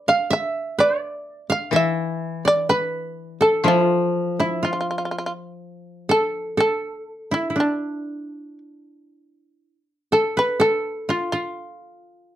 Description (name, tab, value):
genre	japanese traditional, Japanese chamber music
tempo	62 BPM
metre	4/4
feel	rubato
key	D kumoi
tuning	A4 = 440 Hz
part	shamisen	melody	0.0-12.4 s	D4 to F5	-22 LUFS	equal	none
part	koto	second line	0.0-12.4 s	D4 to F5	-24 LUFS	right 1 dB	none
part	koto	accompaniment	1.7-6.6 s	E3 to F3	-23 LUFS	left 2 dB	none
room	moderate studio ambience, RT60 0.5 s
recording	dark, warm production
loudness	-19 LUFS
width	side -12 dB against mid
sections	0.0-9.6 A section; 9.6-12.4 B section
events	none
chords	none